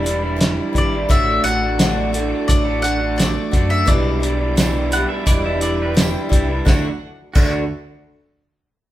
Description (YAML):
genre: folk rock and heartland rock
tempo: 86 BPM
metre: 4/4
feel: straight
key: D major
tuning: A4 = 441 Hz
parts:
  - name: picked swing-style acoustic guitar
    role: accompaniment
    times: 0.0-7.6 s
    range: A2 to F#4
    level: -26 LUFS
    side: left 4 dB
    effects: none
  - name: muted symphonic string section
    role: sustained chords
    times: 0.0-7.0 s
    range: D4 to D6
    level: -34 LUFS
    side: equal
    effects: none
  - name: electric guitar through a small old amp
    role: riff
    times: 0.0-7.6 s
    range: A2 to F#4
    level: -23 LUFS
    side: right 4 dB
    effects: none
  - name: deep dub fingered electric bass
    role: bass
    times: 0.0-7.7 s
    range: E1 to F#2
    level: -24 LUFS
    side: equal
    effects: none
  - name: cloth-damped thuddy drum kit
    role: drums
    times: 0.1-7.5 s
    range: crash cymbal, hi-hat, kick drum, snare drum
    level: -17 LUFS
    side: equal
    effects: none
  - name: mandolin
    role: melody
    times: 0.8-5.9 s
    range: D5 to F#5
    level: -22 LUFS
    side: left 2 dB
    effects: none
  - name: tambourine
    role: percussion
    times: 1.8-7.7 s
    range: none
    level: -34 LUFS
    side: right 9 dB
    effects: none
  - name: pedal steel guitar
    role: second line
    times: 4.9-7.7 s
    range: F#4 to F#5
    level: -26 LUFS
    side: right 2 dB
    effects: none
room: moderate large studio reverb, RT60 1.1 s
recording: band playing live in one room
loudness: -15 LUFS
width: side -14 dB against mid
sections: 0.0-6.7 A section; 6.7-8.9 B section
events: none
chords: 0.0 G6; 1.1 D/A; 3.9 G6/B; 6.7 D